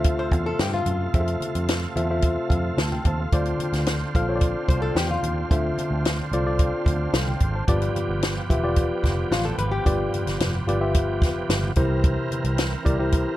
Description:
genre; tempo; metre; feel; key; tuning
uptempo 1960s-style soul; 110 BPM; 4/4; straight; F major; A4 = 440 Hz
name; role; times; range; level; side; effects
tine electric piano; accompaniment; 0.0-13.4 s; G2 to A5; -26 LUFS; left 2 dB; none
bright tonewheel organ; sustained chords; 0.0-13.4 s; C3 to Bb4; -32 LUFS; right 3 dB; overdrive, chorus vibrato, wide subtle chorus
vintage muted picked electric bass; bass; 0.0-13.3 s; E1 to G2; -26 LUFS; equal; none
compact cocktail drum kit; drums; 0.0-13.3 s; hi-hat, kick drum, snare drum; -23 LUFS; equal; none
congas; percussion; 0.0-13.3 s; none; -36 LUFS; right 2 dB; none
archtop guitar, miked and amplified; riff; 0.2-1.1, 4.7-5.5, 9.3-10.5 s; F4 to C5; -28 LUFS; left 4 dB; none
room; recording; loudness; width
light reverb, studio ambience; dark, warm production; -21 LUFS; side -15 dB against mid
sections
0.0-13.4 A section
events
tine electric piano fill 2.2-3.3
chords
0.0 Fmaj7; 3.3 Dm7; 7.7 G7; 11.8 C7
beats
0.05 0.59 | 1.14 1.69 2.23 2.78 | 3.33 3.87 4.42 4.96 | 5.51 6.05 6.59 7.14 | 7.68 8.23 8.77 9.31 | 9.86 10.40 10.95 11.49 | 12.04 12.58 13.13

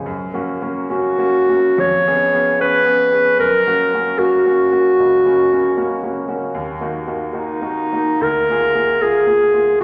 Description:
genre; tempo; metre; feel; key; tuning
classical, romantic duo for clarinet and grand piano; 74 BPM; 4/4; uneven beats, rubato; F# major; A4 = 441 Hz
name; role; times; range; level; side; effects
clear grand piano; accompaniment; 0.0-9.8 s; C#1 to G#4; -25 LUFS; equal; none
mellow clarinet; melody; 0.9-9.8 s; D#4 to C#5; -16 LUFS; equal; none
room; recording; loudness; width
wet scoring stage reverb, RT60 1.8 s; none; -16 LUFS; mono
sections
0.1-9.8 A section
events
none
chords
0.1 F#; 1.8 C#7/E#; 3.4 F#; 6.5 D#m; 8.2 A#7/D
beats
| 0.07 0.90 1.79 2.59 | 3.38 4.18 4.98 5.77 | 6.55 7.34 8.21 9.00 | 9.78

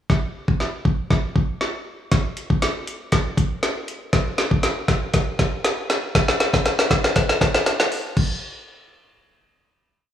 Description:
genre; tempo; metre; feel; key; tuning
dance-pop; 119 BPM; 4/4; straight; none; none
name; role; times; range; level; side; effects
smooth R&B drum kit; drums; 0.1-8.3 s; crash cymbal, hi-hat, kick drum, snare drum; -19 LUFS; equal; none
room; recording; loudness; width
moderate lush hall reverb, RT60 1.8 s; worn, warbling old tape, cassette tape, warbly pitch drift, studio ambience; -19 LUFS; side -10 dB against mid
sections
0.1-8.2 build; 8.2-10.1 final hit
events
build-up 0.1-8.2; drum fill 0.1-8.2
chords
none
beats
| 0.10 0.60 1.11 1.61 | 2.12 2.62 3.12 3.63 | 4.13 4.64 5.14 5.64 | 6.15 6.65 7.16 7.66 | 8.17

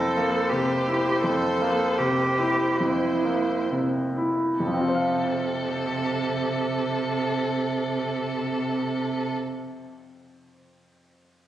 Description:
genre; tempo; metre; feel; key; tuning
classical, slow romantic movement for piano quartet; 31-44 BPM; 4/4; rubato; F major; A4 = 440 Hz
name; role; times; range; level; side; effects
rich violin; melody; 0.0-9.3 s; A4 to C5; -30 LUFS; left 2 dB; none
rich cello; second line; 0.0-9.3 s; C3 to A4; -26 LUFS; right 3 dB; none
bright grand piano; accompaniment; 0.0-11.5 s; F2 to F5; -26 LUFS; left 1 dB; none
room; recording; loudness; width
wet concert hall reverb, RT60 2.1 s; recorded on a phone in the room, studio reverb; -22 LUFS; side -12 dB against mid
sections
0.0-4.6 A section; 4.6-11.2 B section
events
slowing down 0.0-4.6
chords
0.0 C7/F; 4.6 F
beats
1.22 2.80 | 4.59 6.22 7.90 9.56

